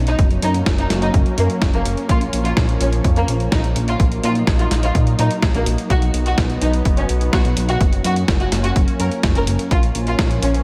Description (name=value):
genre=italo disco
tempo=126 BPM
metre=4/4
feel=straight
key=unclear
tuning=A4 = 438 Hz
part: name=lush unison pad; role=sustained chords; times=0.0-10.6 s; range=B2 to Eb4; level=-26 LUFS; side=equal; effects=chorus
part: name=chorused synth bass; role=bass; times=0.0-10.6 s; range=Gb1 to Bb2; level=-22 LUFS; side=equal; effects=tube saturation
part: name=dark symphonic violin section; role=melody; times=0.1-10.5 s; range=Bb3 to Bb4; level=-26 LUFS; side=equal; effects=analog delay, shimmer reverb
part: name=dusty soul sampler-style drum kit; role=drums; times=0.1-10.6 s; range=hi-hat, snare drum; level=-27 LUFS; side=equal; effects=none
part: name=electronic kick drum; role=drums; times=0.2-10.3 s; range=none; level=-20 LUFS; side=equal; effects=overdrive
room=moderate plate reverb, RT60 2.3 s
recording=dreamy mix soaked in reverb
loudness=-18 LUFS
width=mono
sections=0.0-10.6 A section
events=none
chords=0.2 Gb; 2.1 Bbm; 4.0 Ebm/Bb; 5.9 B; 7.8 Gb; 9.7 Bbm